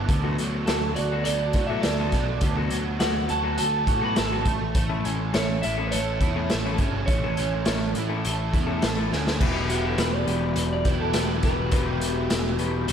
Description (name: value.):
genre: indie rock.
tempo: 103 BPM.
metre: 4/4.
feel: straight.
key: D major.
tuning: A4 = 440 Hz.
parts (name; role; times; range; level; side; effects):
overdriven electric guitar; riff; 0.0-12.9 s; D3 to A4; -30 LUFS; right 5 dB; ensemble chorus, slapback echo.
fuzz picked electric bass; bass; 0.0-12.9 s; E1 to A2; -28 LUFS; equal; overdrive.
raw garage drum kit; drums; 0.1-12.9 s; crash cymbal, hi-hat, kick drum, snare drum; -26 LUFS; equal; none.
electric guitar through a small old amp; riff; 0.2-12.9 s; E3 to B4; -31 LUFS; left 9 dB; spring reverb, slapback echo.
electric guitar through a small old amp; melody; 0.7-11.7 s; F#4 to B5; -30 LUFS; right 2 dB; slapback echo.
room: light reverb, small room ambience.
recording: none.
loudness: -22 LUFS.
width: side -8 dB against mid.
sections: 0.0-9.4 A section; 9.4-12.9 B section.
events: drum fill 9.1; clean electric guitar solo 9.4-12.9.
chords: 0.1 D6; 4.5 A; 9.4 Emadd9.